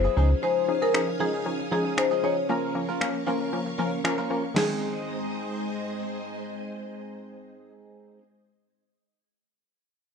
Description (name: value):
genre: dance-pop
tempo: 116 BPM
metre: 4/4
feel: straight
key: Ab major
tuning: A4 = 441 Hz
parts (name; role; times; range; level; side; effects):
- marimba with medium hard mallets; melody; 0.0-8.2 s; Ab4 to Db5; -27 LUFS; left 4 dB; tape echo
- wide unison pluck; accompaniment; 0.0-8.2 s; Eb3 to Bb4; -29 LUFS; left 2 dB; none
- string machine, full ensemble; sustained chords; 0.0-8.2 s; Ab3 to E6; -34 LUFS; equal; ensemble chorus
- direct-recorded clean electric guitar; riff; 0.0-8.2 s; F3 to Bb4; -35 LUFS; right 5 dB; lush chorus
- dusty soul sampler-style drum kit; drums; 0.9-4.7 s; crash cymbal, finger snaps, snare drum; -29 LUFS; equal; none
room: light reverb, digital ambience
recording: dark, warm production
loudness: -24 LUFS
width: side -6 dB against mid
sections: 0.0-4.6 A section; 4.6-8.7 B section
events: none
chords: 0.2 Dbadd9; 2.5 Bbm; 4.6 Ab